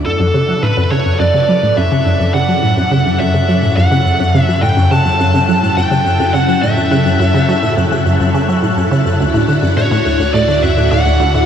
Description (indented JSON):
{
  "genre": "ambient, sequencer-driven space music",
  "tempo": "105 BPM",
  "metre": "4/4",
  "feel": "straight",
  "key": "F# minor",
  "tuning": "A4 = 440 Hz",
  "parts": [
    { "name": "resonant blip pluck", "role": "riff", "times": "0.0-11.4 s", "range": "D2 to F#3", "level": "-14 LUFS", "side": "equal", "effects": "chorus, tape echo" },
    { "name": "analog drone", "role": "bass", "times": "2.0-11.5 s", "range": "D2 to F#2", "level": "-21 LUFS", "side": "equal", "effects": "chorus" },
    { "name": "pulsing gated texture", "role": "texture", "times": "0.0-11.5 s", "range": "F#6", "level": "-26 LUFS", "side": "left 6 dB", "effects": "chorus, built-in reverb" },
    { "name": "smooth overdriven lead guitar", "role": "melody", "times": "0.1-11.5 s", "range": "A4 to A5", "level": "-16 LUFS", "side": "right 1 dB", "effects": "tape echo" },
    { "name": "phased string machine", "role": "sustained chords", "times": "0.1-11.5 s", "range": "C#3 to A4", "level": "-19 LUFS", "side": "left 1 dB", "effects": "ensemble chorus, phaser" }
  ],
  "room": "wet shimmer reverb, RT60 9.0 s",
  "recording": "cassette tape",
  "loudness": "-11 LUFS",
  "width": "side -8 dB against mid",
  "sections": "0.0-11.5 A section",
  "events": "fade-in on string machine 0.0-11.5; fade-in on synth drone 0.0-11.5",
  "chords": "0.1 F#m7; 9.2 Dadd9"
}